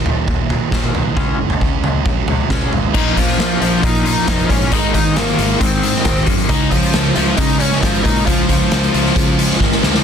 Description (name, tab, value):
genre	quiet-loud alternative rock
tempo	135 BPM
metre	4/4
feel	straight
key	unclear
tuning	A4 = 440 Hz
part	electric guitar at the edge of break-up	arpeggios	0.0-6.5 s	Eb2 to F4	-23 LUFS	left 5 dB	tremolo
part	thick fuzz guitar	riff	0.0-10.0 s	Eb2 to Db4	-21 LUFS	right 10 dB	distortion
part	growling fingered electric bass	bass	0.0-10.0 s	Eb1 to Db3	-23 LUFS	left 1 dB	overdrive
part	raw garage drum kit	drums	0.1-10.0 s	crash cymbal, hi-hat, kick drum, snare drum, toms	-17 LUFS	equal	none
part	octave-fuzz lead guitar	melody	2.9-9.6 s	F3 to Eb5	-20 LUFS	equal	distortion, digital delay
part	overdriven semi-hollow guitar	riff	2.9-10.0 s	Ab2 to Db4	-23 LUFS	left 11 dB	phaser
part	thick fuzz guitar	riff	6.5-10.0 s	Db3 to Db4	-21 LUFS	left 1 dB	distortion
room	light reverb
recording	dense, heavily limited modern master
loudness	-13 LUFS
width	side -7 dB against mid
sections	0.0-2.9 A section; 2.9-10.0 B section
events	drum fill 9.6-10.0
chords	0.0 Eb5; 1.2 Db5; 2.9 Bbm; 4.7 Abadd9; 6.5 Db